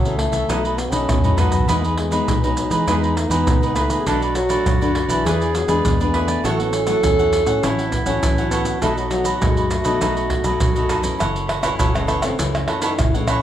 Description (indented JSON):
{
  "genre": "samba and choro",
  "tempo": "101 BPM",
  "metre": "4/4",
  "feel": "straight",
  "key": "E major",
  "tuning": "A4 = 439 Hz",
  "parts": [
    { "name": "breathy trombone", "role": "melody", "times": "0.0-13.4 s", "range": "D3 to E4", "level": "-26 LUFS", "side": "left 2 dB", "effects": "none" },
    { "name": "cavaquinho", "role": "accompaniment", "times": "0.0-13.4 s", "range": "D4 to F#5", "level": "-24 LUFS", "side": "right 3 dB", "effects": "none" },
    { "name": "nylon-string guitar", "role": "accompaniment", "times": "0.0-13.4 s", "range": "F#2 to G#4", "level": "-25 LUFS", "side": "left 3 dB", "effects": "none" },
    { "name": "fingered electric bass", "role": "bass", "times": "0.0-13.4 s", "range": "F#1 to E3", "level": "-24 LUFS", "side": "equal", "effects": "none" },
    { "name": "maracas, pandeiro, surdo and tamborim", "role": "percussion", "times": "0.1-13.4 s", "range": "none", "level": "-22 LUFS", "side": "right 1 dB", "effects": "none" },
    { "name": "warm clarinet", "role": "second line", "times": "1.7-11.2 s", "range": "D#4 to A4", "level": "-23 LUFS", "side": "right 2 dB", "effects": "none" }
  ],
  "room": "moderate large studio reverb, RT60 0.8 s",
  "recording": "band playing live in one room",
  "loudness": "-16 LUFS",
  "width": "side -11 dB against mid",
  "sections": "0.0-11.2 A section; 11.2-13.4 B section",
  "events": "drum fill 1.1-1.7",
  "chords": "0.5 B7; 1.7 Emaj7; 4.1 Bm7; 5.3 E7; 6.4 A6; 8.8 B7; 11.2 F#m7",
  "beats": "0.49 1.09 | 1.68 2.28 2.87 3.47 | 4.06 4.66 5.25 5.85 | 6.44 7.04 7.63 8.23 | 8.82 9.42 10.01 10.61 | 11.20 11.80 12.39 12.99"
}